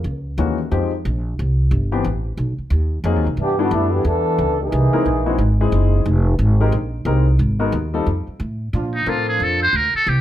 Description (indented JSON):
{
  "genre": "jazz, big band swing",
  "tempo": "180 BPM",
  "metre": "4/4",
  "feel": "swing 62% on 8ths",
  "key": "unclear",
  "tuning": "A4 = 440 Hz",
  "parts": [
    { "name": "mellow trombone section", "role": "second line", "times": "0.0-0.3, 3.4-5.6 s", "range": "Db3 to A4", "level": "-20 LUFS", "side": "right 1 dB", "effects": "none" },
    { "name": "upright bass", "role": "bass", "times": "0.0-10.2 s", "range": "F1 to Bb2", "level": "-18 LUFS", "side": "equal", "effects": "none" },
    { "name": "clear grand piano", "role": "accompaniment", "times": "0.4-9.6 s", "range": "Fb3 to Bb4", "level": "-22 LUFS", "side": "left 4 dB", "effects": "none" },
    { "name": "warm trombone section", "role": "sustained chords", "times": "8.7-9.7 s", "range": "F3 to F4", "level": "-29 LUFS", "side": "right 3 dB", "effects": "none" },
    { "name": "trumpet with metal mute", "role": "melody", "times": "9.0-10.2 s", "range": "Eb4 to C5", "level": "-17 LUFS", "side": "right 1 dB", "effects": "plate reverb" }
  ],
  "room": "light reverb",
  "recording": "none",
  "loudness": "-16 LUFS",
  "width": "side -12 dB against mid",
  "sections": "0.0-8.7 A section; 8.7-10.2 B section",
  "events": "trombone section solo 0.0-8.7; muted trumpet solo 8.7-10.2",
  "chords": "0.0 Gb9; 0.7 Fm9; 2.0 Asus2; 2.7 Ab9; 3.4 G69; 4.7 C7alt; 6.1 Fm11; 7.4 Abm7; 8.1 F; 8.7 Bbmaj7"
}